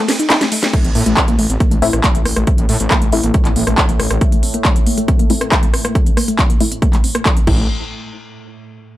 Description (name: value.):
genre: driving peak-time techno.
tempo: 138 BPM.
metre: 4/4.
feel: straight.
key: A minor.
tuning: A4 = 441 Hz.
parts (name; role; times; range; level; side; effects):
warbly dusty pluck; riff; 0.0-7.7 s; A3 to D#4; -21 LUFS; equal; chorus, overdrive, sidechain pumping, tape echo.
techno drum kit; drums; 0.1-7.6 s; crash cymbal, handclaps, hi-hat, ride cymbal, rim click, snare drum; -18 LUFS; equal; overdrive, sidechain pumping on hats, sidechain pumping on cymbals.
deep dark ambient pad; drone; 2.2-7.7 s; A2 to A3; -26 LUFS; left 2 dB; chorus, built-in reverb, sidechain pumping.
electronic kick drum; drums; 0.7-7.6 s; none; -15 LUFS; equal; overdrive.
detuned saw bass; bass; 0.8-4.2, 7.5-7.7 s; A1 to A2; -19 LUFS; equal; sidechain pumping.
filtered dub chord stab; stabs; 1.8-7.6 s; A3 to E4; -21 LUFS; left 3 dB; chorus, sidechain pumping, tape echo.
room: little or no reverb.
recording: dry, gritty hardware recording.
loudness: -12 LUFS.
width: side -15 dB against mid.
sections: 0.7-7.7 A section; 7.7-9.0 B section.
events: break 0.0-0.7; drum fill 0.1-0.7; band accent 0.6; filter sweep on synth arpeggio sound 0.7-7.7; filter sweep on synth stab 0.7-7.7.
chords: 0.0 Am; 7.7 N.C..